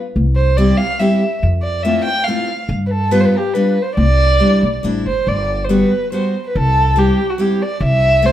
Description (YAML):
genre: musette waltz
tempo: 142 BPM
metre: 3/4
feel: straight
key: C major, G major from 5.3 s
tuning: A4 = 441 Hz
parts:
  - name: upright bass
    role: bass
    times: 0.2-8.3 s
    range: G1 to G2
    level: -16 LUFS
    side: equal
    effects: none
  - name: dark violin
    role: melody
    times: 0.4-8.3 s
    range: F#4 to G5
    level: -17 LUFS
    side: right 2 dB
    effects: none
  - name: picked steel-string acoustic guitar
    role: accompaniment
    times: 0.6-8.3 s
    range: G3 to A4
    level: -17 LUFS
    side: left 1 dB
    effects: none
room: wet studio reverb, RT60 0.9 s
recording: band playing live in one room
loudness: -13 LUFS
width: side -11 dB against mid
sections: 0.0-5.3 A section; 5.3-8.3 B section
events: none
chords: 0.1 C; 1.4 Fmaj7; 2.7 G7; 4.0 Cadd9; 5.3 Gmaj7; 6.5 C; 7.8 Am/C